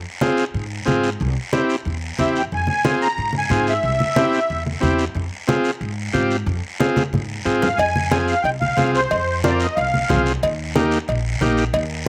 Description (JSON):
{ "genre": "latin, cumbia", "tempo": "182 BPM", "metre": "4/4", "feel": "straight", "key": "F harmonic minor, F dorian from 7.8 s", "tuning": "A4 = 440 Hz", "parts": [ { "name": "upright bass", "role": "bass", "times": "0.0-12.1 s", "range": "Bb1 to Ab2", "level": "-27 LUFS", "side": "equal", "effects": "none" }, { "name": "overdriven combo organ", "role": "accompaniment", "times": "0.2-11.6 s", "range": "Bb3 to Bb4", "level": "-23 LUFS", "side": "equal", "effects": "slapback echo" }, { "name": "congas", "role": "percussion", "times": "0.2-11.9 s", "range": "none", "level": "-26 LUFS", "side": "equal", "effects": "none" }, { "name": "guiro", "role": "percussion", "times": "0.2-12.1 s", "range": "none", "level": "-34 LUFS", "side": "equal", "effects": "none" }, { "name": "musette accordion", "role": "melody", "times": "2.2-4.6, 7.6-10.2 s", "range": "C5 to Bb5", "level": "-23 LUFS", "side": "equal", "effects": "slapback echo" }, { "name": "cowbell and timbales", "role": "percussion", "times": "7.8-11.9 s", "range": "none", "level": "-26 LUFS", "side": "equal", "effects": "none" } ], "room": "little or no reverb", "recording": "recorded outdoors, with no room sound", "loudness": "-20 LUFS", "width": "mono", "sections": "0.0-7.8 A section; 7.8-12.1 B section", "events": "drum fill 7.0-7.8", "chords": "0.0 Fm; 1.2 C; 2.5 Fm; 3.8 C; 5.2 Fm; 10.4 Eb", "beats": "0.22 0.55 0.88 | 1.21 1.53 1.86 2.19 | 2.52 2.85 3.18 3.51 | 3.84 4.17 4.50 4.82 | 5.15 5.48 5.81 6.14 | 6.47 6.80 7.13 7.46 | 7.79 8.12 8.45 8.78 | 9.11 9.44 9.77 10.10 | 10.42 10.75 11.08 11.41 | 11.74 12.07" }